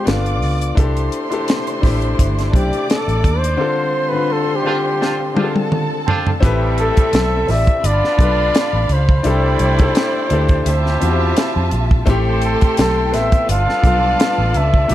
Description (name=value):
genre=lush 1970s-style soul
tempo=85 BPM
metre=4/4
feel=swing 54% on 16ths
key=unclear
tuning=A4 = 443 Hz
part: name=breathy flugelhorn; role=melody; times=0.0-14.9 s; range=F4 to F5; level=-20 LUFS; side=equal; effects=none
part: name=warm symphonic violin section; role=second line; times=0.0-14.9 s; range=C4 to D6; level=-25 LUFS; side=right 1 dB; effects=none
part: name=warm baby grand piano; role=accompaniment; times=0.0-14.9 s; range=D3 to D5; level=-23 LUFS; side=left 5 dB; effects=none
part: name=vintage muted fingered electric bass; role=bass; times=0.1-14.9 s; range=G1 to F2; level=-18 LUFS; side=right 1 dB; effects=none
part: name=tight funk drum kit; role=drums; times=0.1-14.9 s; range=hi-hat, kick drum, snare drum, toms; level=-17 LUFS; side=equal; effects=none
part: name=warm studio string section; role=sustained chords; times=0.8-6.4, 12.1-14.9 s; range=C3 to B4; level=-30 LUFS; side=equal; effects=none
part: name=clear horn section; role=stabs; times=4.7-14.9 s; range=G3 to C5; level=-25 LUFS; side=right 3 dB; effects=none
room=light reverb, studio reverb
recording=dark, warm production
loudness=-14 LUFS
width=side -13 dB against mid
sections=0.0-6.4 A section; 6.4-14.9 B section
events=flugelhorn solo 0.0-6.4; band accent 3.6-6.4; drum fill 5.0-6.4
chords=0.1 G9; 0.8 C69; 3.6 G7sus4/D; 6.4 Am7; 7.8 G9 (rootless); 9.2 C69; 10.7 Dm11; 12.1 Am7; 13.5 G9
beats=0.07 | 0.77 1.48 2.19 2.89 | 3.60 4.30 5.01 5.72 | 6.42 7.13 7.84 8.54 | 9.25 9.96 10.66 11.37 | 12.08 12.78 13.49 14.20 | 14.90